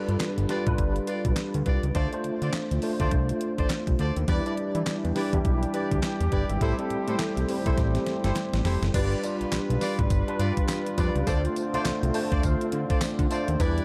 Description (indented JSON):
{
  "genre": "R&B, new jack swing",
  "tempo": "103 BPM",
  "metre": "4/4",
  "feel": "swing 60% on 16ths",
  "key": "D dorian",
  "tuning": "A4 = 440 Hz",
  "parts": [
    { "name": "tine electric piano", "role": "accompaniment", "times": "0.0-13.8 s", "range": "G3 to A5", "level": "-31 LUFS", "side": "equal", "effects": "ensemble chorus" },
    { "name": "fat analog bass", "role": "bass", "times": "0.1-13.8 s", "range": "F1 to E3", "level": "-29 LUFS", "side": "equal", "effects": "none" },
    { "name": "clean 12-bit digital drum machine", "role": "drums", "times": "0.1-13.8 s", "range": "crash cymbal, handclaps, hi-hat, kick drum, snare drum, tambourine", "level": "-31 LUFS", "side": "equal", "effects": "none" },
    { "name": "group handclap", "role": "percussion", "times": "0.2-13.2 s", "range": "none", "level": "-48 LUFS", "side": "equal", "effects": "none" },
    { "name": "warm horn section", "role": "stabs", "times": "0.5-13.8 s", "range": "E4 to D5", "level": "-38 LUFS", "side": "equal", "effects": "delay" },
    { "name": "mellow brass ensemble", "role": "sustained chords", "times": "4.3-13.8 s", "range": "D3 to B4", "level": "-38 LUFS", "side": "equal", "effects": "none" }
  ],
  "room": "light reverb",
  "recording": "dark, warm production",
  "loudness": "-26 LUFS",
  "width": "mono",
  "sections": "0.0-8.9 A section; 8.9-13.8 B section",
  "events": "drum fill 7.8-8.9; tine electric piano fill 11.9-13.6",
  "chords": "0.0 G7; 2.0 Dm7; 4.3 Em7; 6.6 Am7; 8.9 G7; 11.3 Dm7",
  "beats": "0.20 0.79 1.37 | 1.95 2.53 3.12 3.70 | 4.28 4.86 5.45 6.03 | 6.61 7.19 7.78 8.36 | 8.94 9.52 10.11 10.69 | 11.27 11.85 12.44 13.02 | 13.60"
}